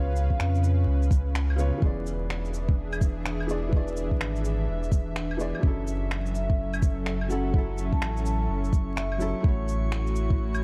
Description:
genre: future garage.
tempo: 126 BPM.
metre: 4/4.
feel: swing 63% on 16ths.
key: F# minor.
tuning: A4 = 439 Hz.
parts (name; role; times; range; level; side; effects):
vibraphone with medium mallets; melody; 0.0-0.5, 6.3-9.4 s; E5 to A5; -40 LUFS; equal; tape echo.
felt-muted upright piano; accompaniment; 0.0-10.6 s; C#3 to D5; -37 LUFS; equal; sidechain pumping, tape echo.
airy breathy pad; sustained chords; 0.0-10.6 s; C#3 to E#5; -36 LUFS; equal; chorus, vintage 12-bit sampler grit, sidechain pumping.
warm sub bass; bass; 0.0-10.6 s; E1 to E#2; -30 LUFS; equal; sidechain pumping.
electronic shaker, finger snaps and claves; drums; 0.2-10.6 s; none; -38 LUFS; equal; none.
electronic kick drum; drums; 0.3-10.4 s; none; -26 LUFS; equal; none.
drifting glass-harmonics texture; texture; 6.5-10.6 s; C#6; -46 LUFS; equal; chorus, built-in reverb.
room: light reverb.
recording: dark, warm production, vinyl crackle.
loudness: -27 LUFS.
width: mono.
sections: 0.0-10.6 A section.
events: none.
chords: 0.0 C#7; 1.8 E7; 5.6 F#m7; 9.4 A6.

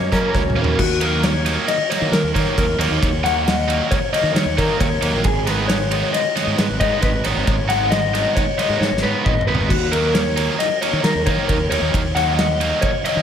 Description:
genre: math rock and midwest emo.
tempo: 134 BPM.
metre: 5/4.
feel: straight.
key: unclear.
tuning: A4 = 439 Hz.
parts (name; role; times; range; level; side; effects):
twangy electric guitar; accompaniment; 0.0-0.8 s; F#2 to E4; -28 LUFS; right 8 dB; spring reverb, slapback echo.
mellow electric guitar; arpeggios; 0.0-13.2 s; F#4 to F#5; -21 LUFS; left 4 dB; spring reverb.
fuzz fingered electric bass; bass; 0.0-13.2 s; G#1 to F#3; -23 LUFS; equal; overdrive.
cranked stack guitar; riff; 0.1-13.2 s; C#3 to D#4; -23 LUFS; right 4 dB; overdrive.
loose indie drum kit; drums; 0.1-13.2 s; crash cymbal, hi-hat, kick drum, ride cymbal, snare drum, toms; -22 LUFS; equal; none.
room: moderate lush hall reverb, RT60 1.7 s.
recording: big arena sound.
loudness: -16 LUFS.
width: side -8 dB against mid.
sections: 0.8-13.2 A section.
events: drum fill 0.3-0.8, 8.8-9.7.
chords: 0.0 F#7; 0.8 D#m7; 5.2 G#m; 9.7 D#m7.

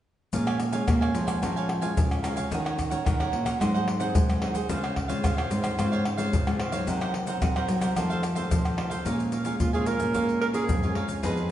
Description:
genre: samba and choro.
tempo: 110 BPM.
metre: 4/4.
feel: straight.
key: Bb minor.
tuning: A4 = 440 Hz.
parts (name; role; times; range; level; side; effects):
cavaquinho; accompaniment; 0.3-11.5 s; Eb4 to Ab5; -32 LUFS; right 4 dB; none.
nylon-string guitar; accompaniment; 0.3-11.5 s; F2 to Ab4; -32 LUFS; left 2 dB; none.
nylon-string guitar; bass; 0.3-11.5 s; F2 to C4; -29 LUFS; right 1 dB; none.
egg shaker, surdo, pandeiro and tamborim; percussion; 0.3-11.5 s; none; -28 LUFS; left 1 dB; none.
breathy alto saxophone; melody; 9.6-10.9 s; F4 to Bb4; -28 LUFS; right 3 dB; none.
room: wet recital hall reverb, RT60 1.6 s.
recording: recorded in a church or concert hall, nothing above 10.5 kHz.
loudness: -24 LUFS.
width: side -12 dB against mid.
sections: 0.3-9.1 A section; 9.1-11.5 B section.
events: none.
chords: 0.3 Bbm7; 2.5 Ebm7; 3.6 Ab7; 4.7 Dbmaj7; 6.9 Cm7b5; 8.0 F7; 9.1 Bbm7.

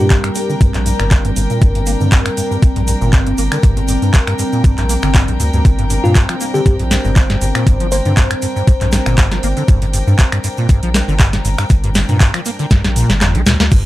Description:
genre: acid house.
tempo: 119 BPM.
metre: 4/4.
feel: swing 54% on 16ths.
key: G minor pentatonic.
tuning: A4 = 441 Hz.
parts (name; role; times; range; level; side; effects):
bell-like FM electric piano; melody; 0.0-0.5, 6.0-8.3 s; F4 to C5; -22 LUFS; left 2 dB; chorus, cassette tape, tape echo.
dark analog pad; sustained chords; 0.0-13.7 s; G3 to C5; -23 LUFS; equal; chorus, sidechain pumping.
acid bass, saw; riff; 0.0-13.8 s; F2 to Bb3; -19 LUFS; equal; overdrive, ensemble chorus, analog delay.
saturated sub bass; bass; 0.0-13.9 s; G1 to G2; -17 LUFS; equal; sidechain pumping.
warm studio string section; texture; 0.0-13.7 s; D4 to Bb5; -26 LUFS; left 2 dB; sidechain pumping.
booming analog drum machine; drums; 0.1-13.8 s; crash cymbal, finger snaps, handclaps, hi-hat, snare drum; -18 LUFS; equal; overdrive.
electronic kick drum; drums; 0.1-13.8 s; none; -10 LUFS; equal; overdrive.
egg shaker; percussion; 0.1-13.8 s; none; -31 LUFS; left 3 dB; none.
room: little or no reverb.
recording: dry, gritty hardware recording, transformer saturation.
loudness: -11 LUFS.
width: side -16 dB against mid.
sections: 0.0-13.7 A section.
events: filter sweep on acid bass 0.0-13.7; drum fill 12.7-13.7; kick drops out 13.2-13.7.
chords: 0.0 Gm.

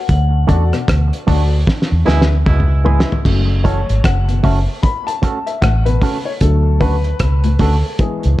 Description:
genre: roots reggae.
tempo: 76 BPM.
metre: 4/4.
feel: swing 61% on 16ths.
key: F# minor.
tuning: A4 = 440 Hz.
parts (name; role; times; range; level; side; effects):
vibraphone with hard mallets; melody; 0.0-0.8 s; F#5; -28 LUFS; left 8 dB; tape echo.
vintage muted fingered electric bass; bass; 0.1-8.4 s; F#1 to E2; -14 LUFS; equal; none.
cloth-damped thuddy drum kit; drums; 0.1-8.4 s; crash cymbal, hi-hat, kick drum, rim click, snare drum, toms; -17 LUFS; equal; none.
electric guitar with an envelope filter; accompaniment; 0.5-7.8 s; G#3 to A4; -25 LUFS; right 6 dB; tape echo.
electric guitar at the edge of break-up; arpeggios; 0.5-7.8 s; A2 to F#3; -26 LUFS; left 4 dB; tremolo.
dark upright piano; stabs; 0.5-8.4 s; C#3 to B5; -23 LUFS; left 5 dB; none.
warm horn section; second line; 2.1-3.1 s; B2 to E4; -26 LUFS; right 4 dB; tape echo.
room: little or no reverb.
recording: dark, warm production.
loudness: -12 LUFS.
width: side -16 dB against mid.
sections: 0.0-3.3 A section; 3.3-8.4 B section.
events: band accent 0.1-3.3; drum fill 1.7-3.3; upright piano solo 3.3-8.4.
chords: 0.1 D; 1.7 E; 3.3 F#m; 6.4 D.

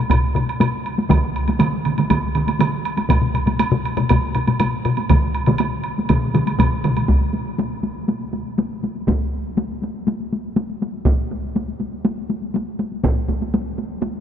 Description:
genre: japanese traditional, taiko drum ensemble.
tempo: 121 BPM.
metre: 4/4.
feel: straight.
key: none.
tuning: none.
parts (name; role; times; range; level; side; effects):
taiko ensemble; percussion; 0.1-14.2 s; none; -22 LUFS; left 1 dB; none.
taiko ensemble; percussion; 0.1-7.0 s; none; -22 LUFS; left 4 dB; none.
taiko ensemble; percussion; 0.1-13.4 s; none; -22 LUFS; right 1 dB; none.
woodblock; percussion; 0.1-7.1 s; none; -25 LUFS; right 5 dB; none.
taiko ensemble; percussion; 1.1-7.0 s; none; -24 LUFS; right 4 dB; none.
room: wet cathedral reverb, RT60 6.0 s.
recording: in a vast, echoing space, nothing above 7.7 kHz.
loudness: -18 LUFS.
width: side -9 dB against mid.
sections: 0.0-7.1 A section; 7.1-14.2 B section.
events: none.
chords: none.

